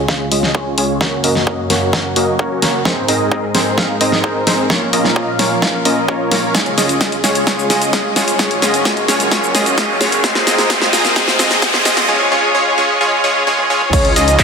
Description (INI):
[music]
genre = EDM, festival progressive house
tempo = 130 BPM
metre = 4/4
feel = straight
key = Db major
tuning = A4 = 440 Hz
[part]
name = lush unison pad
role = sustained chords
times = 0.0-14.4 s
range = Db2 to F5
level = -23 LUFS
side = equal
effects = chorus, sidechain pumping
[part]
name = supersaw stab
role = riff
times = 0.0-14.4 s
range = Ab3 to Gb5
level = -15 LUFS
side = equal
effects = cassette tape, sidechain pumping, low-pass filter, ping-pong delay
[part]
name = big-room dance drum kit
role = drums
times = 0.1-14.4 s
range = cabasa, crash cymbal, handclaps, hi-hat, ride cymbal, snare drum, toms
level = -17 LUFS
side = equal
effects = none
[part]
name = electronic kick drum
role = drums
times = 0.1-14.4 s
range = none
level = -18 LUFS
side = equal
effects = overdrive, high-pass filter on kick
[part]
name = riser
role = sound effects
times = 8.5-12.1 s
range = none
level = -21 LUFS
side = equal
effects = none
[part]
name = wide unison lead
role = arpeggios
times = 13.9-14.4 s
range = Db5 to Eb5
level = -14 LUFS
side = equal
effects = sidechain pumping
[part]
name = wide detuned saw bass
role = bass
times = 13.9-14.4 s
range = Db2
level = -17 LUFS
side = equal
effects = chorus, sidechain pumping
[sound]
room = wet lush hall reverb, RT60 2.2 s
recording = dense, heavily limited modern master, high-pass filter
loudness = -12 LUFS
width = side -5 dB against mid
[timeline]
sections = 0.0-13.9 A section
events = build-up 0.0-13.9; drum fill 0.0-12.1, 13.5-13.9; filter sweep on supersaw synth 0.0-13.9; filter sweep on analog synth pad 0.0-13.9; filter sweep 0.0-13.9; riser 8.5-12.1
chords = 0.0 Db; 1.0 Gb; 2.9 Abadd9; 4.7 Bbm; 6.5 Db; 8.4 Gb; 10.2 Abadd9; 12.1 Db/Ab; 13.9 Db